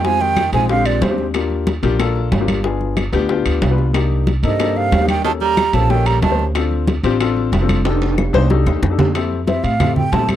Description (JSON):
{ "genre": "Afro-Cuban jazz", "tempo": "184 BPM", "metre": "4/4", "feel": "straight", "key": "unclear", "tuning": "A4 = 440 Hz", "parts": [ { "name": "breathy mellow silver concert flute", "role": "melody", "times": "0.0-1.3, 4.4-6.5, 9.5-10.3 s", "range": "C5 to Bb5", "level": "-18 LUFS", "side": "right 4 dB", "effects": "none" }, { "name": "bright tenor saxophone", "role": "second line", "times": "0.0-1.3, 4.4-6.5 s", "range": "Ab2 to G3", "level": "-24 LUFS", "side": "right 11 dB", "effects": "none" }, { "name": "warm baby grand piano", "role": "accompaniment", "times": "0.0-10.4 s", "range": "Ab3 to C5", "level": "-20 LUFS", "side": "left 8 dB", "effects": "none" }, { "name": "upright bass", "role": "bass", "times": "0.0-10.4 s", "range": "F1 to Bb2", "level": "-19 LUFS", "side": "right 1 dB", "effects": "none" }, { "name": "bongos", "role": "percussion", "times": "0.0-10.4 s", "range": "none", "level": "-26 LUFS", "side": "left 7 dB", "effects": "none" }, { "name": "congas", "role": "percussion", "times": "0.0-10.4 s", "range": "none", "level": "-21 LUFS", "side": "right 1 dB", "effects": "none" }, { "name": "claves", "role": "percussion", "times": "0.4-10.4 s", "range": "none", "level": "-30 LUFS", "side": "left 12 dB", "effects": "none" }, { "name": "timbales", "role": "percussion", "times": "0.4-10.4 s", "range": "none", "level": "-27 LUFS", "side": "right 5 dB", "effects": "none" } ], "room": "light reverb", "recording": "dry, close 1970s-style studio recording", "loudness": "-14 LUFS", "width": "side -11 dB against mid", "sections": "0.0-9.2 A section; 9.2-10.4 B section", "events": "drum fill 7.9-9.2; flute solo 9.2-10.4", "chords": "0.0 Fm9; 0.7 Bb13; 1.3 Ebmaj7; 2.6 G7b9; 3.9 Cm7; 5.2 Eb7#11; 6.5 Dm7; 7.9 F13; 9.2 Fmaj7" }